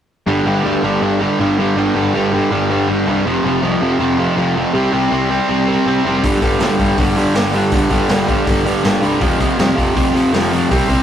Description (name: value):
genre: punk rock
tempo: 161 BPM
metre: 4/4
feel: straight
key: unclear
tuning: A4 = 442 Hz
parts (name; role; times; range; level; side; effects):
- cranked stack guitar; riff; 0.3-11.0 s; F2 to C4; -14 LUFS; equal; overdrive
- fuzz picked electric bass; bass; 0.3-11.0 s; F1 to D2; -23 LUFS; left 1 dB; overdrive
- raw garage drum kit; drums; 6.2-11.0 s; hi-hat, kick drum, snare drum; -18 LUFS; equal; none
room: moderate studio ambience, RT60 0.5 s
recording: rough rehearsal-room recording, tube saturation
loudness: -13 LUFS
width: side -9 dB against mid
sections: 0.3-11.0 A section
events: none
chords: 0.3 G5; 3.3 F5; 4.7 C5; 6.2 G5; 9.2 F5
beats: | 0.27 0.65 1.02 1.39 | 1.76 2.14 2.51 2.88 | 3.25 3.63 4.00 4.37 | 4.75 5.12 5.49 5.86 | 6.23 6.61 6.98 7.35 | 7.72 8.10 8.47 8.84 | 9.21 9.59 9.96 10.33 | 10.70